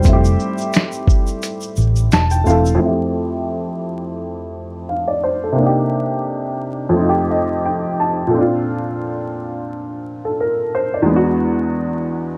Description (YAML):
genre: lo-fi hip hop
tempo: 87 BPM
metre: 4/4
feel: swing 55% on 16ths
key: F major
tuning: A4 = 440 Hz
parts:
  - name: felt-muted upright piano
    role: melody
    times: 0.0-2.1 s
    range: C5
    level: -33 LUFS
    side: equal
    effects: low-pass filter, analog delay
  - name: warm upright piano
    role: accompaniment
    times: 0.0-12.4 s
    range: E2 to A5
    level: -20 LUFS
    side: equal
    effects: cassette tape, low-pass filter
  - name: egg shaker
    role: percussion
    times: 0.0-2.8 s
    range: none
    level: -39 LUFS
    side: equal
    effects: none
  - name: vintage muted fingered electric bass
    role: bass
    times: 0.1-2.8 s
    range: E1 to A1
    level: -17 LUFS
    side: equal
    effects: none
  - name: lo-fi sampler-style drum kit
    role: drums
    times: 0.1-2.8 s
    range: finger snaps, hi-hat, kick drum, shaker, snare drum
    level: -18 LUFS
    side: equal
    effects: vintage 12-bit sampler grit
room: moderate studio reverb, RT60 0.6 s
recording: vinyl crackle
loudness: -18 LUFS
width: mono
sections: 0.0-2.8 A section; 2.8-12.4 B section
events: kick muted 1.4-2.8; upright piano fill 1.8-2.8, 6.9-8.3; filter sweep on upright piano 2.8-12.4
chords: 0.0 Fmaj9; 5.6 Cm7; 6.9 F9; 8.3 Bbmaj9; 11.1 E7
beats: | 0.05 0.74 1.43 2.12 | 2.81 3.50 4.19 4.88 | 5.57 6.26 6.95 7.64 | 8.33 9.02 9.71 10.40 | 11.09 11.78